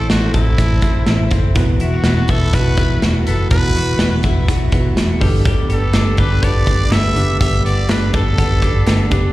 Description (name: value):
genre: jangly indie pop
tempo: 123 BPM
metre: 4/4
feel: straight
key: G major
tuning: A4 = 440 Hz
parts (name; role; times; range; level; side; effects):
- growling trumpet; melody; 0.0-9.1 s; E4 to E5; -23 LUFS; equal; slapback echo, digital delay
- electric guitar through a small old amp; accompaniment; 0.0-9.3 s; A2 to B4; -26 LUFS; right 5 dB; slapback echo
- warm analog keys; accompaniment; 0.0-9.3 s; A3 to B4; -26 LUFS; right 2 dB; chorus
- twelve-string electric guitar; arpeggios; 0.0-9.3 s; E2 to A4; -24 LUFS; left 5 dB; slapback echo, digital delay
- vintage muted fingered electric bass; bass; 0.0-9.3 s; E1 to A1; -16 LUFS; equal; none
- modern studio drum kit; drums; 0.1-9.2 s; hi-hat, kick drum, snare drum; -17 LUFS; equal; none
- group handclap; percussion; 5.9-9.0 s; none; -33 LUFS; right 3 dB; none
room: little or no reverb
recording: live gig heard through the venue's PA, recital hall reverb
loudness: -13 LUFS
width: side -17 dB against mid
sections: 0.0-9.3 A section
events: none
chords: 0.0 Am; 1.6 Esus2; 5.2 Gadd9